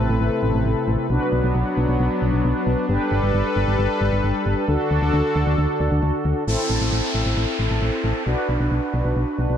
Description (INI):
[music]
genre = synth-pop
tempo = 134 BPM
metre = 4/4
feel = straight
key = A dorian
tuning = A4 = 442 Hz
[part]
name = mellow synth brass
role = accompaniment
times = 0.0-9.6 s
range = C4 to B4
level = -24 LUFS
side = left 1 dB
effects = chorus
[part]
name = warm analog pad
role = sustained chords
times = 0.0-6.5 s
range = C3 to B4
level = -25 LUFS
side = left 1 dB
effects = chorus
[part]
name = solid FM bass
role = bass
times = 0.0-9.6 s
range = G1 to D2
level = -21 LUFS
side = equal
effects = none
[part]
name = downlifter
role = sound effects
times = 6.5-9.6 s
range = none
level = -28 LUFS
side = equal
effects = none
[sound]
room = light reverb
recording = dark, warm production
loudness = -18 LUFS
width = side -9 dB against mid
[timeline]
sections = 0.0-6.5 A section; 6.5-9.6 B section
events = none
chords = 0.0 Amadd9; 1.1 Bm; 2.9 Gadd9; 4.7 D; 6.5 Am; 8.3 Bm